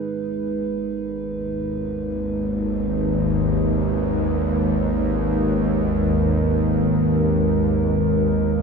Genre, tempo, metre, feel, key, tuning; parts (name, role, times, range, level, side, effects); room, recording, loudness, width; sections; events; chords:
dark ambient drone; free time; G# minor; A4 = 440 Hz
dark analog pad; sustained chords; 0.0-8.6 s; G#3 to B4; -24 LUFS; right 4 dB; chorus
bowed-like drone; drone; 1.1-8.6 s; G#1 to D#2; -20 LUFS; left 1 dB; built-in reverb
bronze singing bowl; texture; 0.0-8.6 s; barely audible
wet spring reverb, RT60 2.5 s; -19 LUFS; side -5 dB against mid
0.0-8.6 A section
0.0 G#m